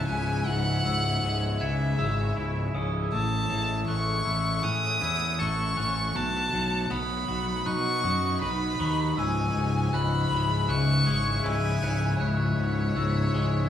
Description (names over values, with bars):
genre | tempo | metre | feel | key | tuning
rock | 79 BPM | 4/4 | straight | C# minor | A4 = 440 Hz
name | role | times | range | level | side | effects
warm violin | melody | 0.0-13.7 s | C#5 to D#6 | -30 LUFS | left 1 dB | none
shimmering ambient pad | sustained chords | 0.0-13.7 s | F#3 to F#5 | -35 LUFS | equal | chorus, built-in reverb, phaser
glockenspiel with soft plastic mallets | arpeggios | 0.0-13.7 s | C#6 to G#6 | -36 LUFS | right 1 dB | none
twangy electric guitar | arpeggios | 0.0-13.7 s | C#2 to B4 | -30 LUFS | left 3 dB | none
fuzz fingered electric bass | bass | 0.0-13.7 s | C#1 to B2 | -28 LUFS | equal | overdrive
room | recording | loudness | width
wet large studio reverb, RT60 0.9 s | band playing live in one room, studio reverb | -24 LUFS | side -10 dB against mid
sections
0.0-13.7 A section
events
none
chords
0.0 C#m; 3.1 A6; 6.2 B; 9.2 C#m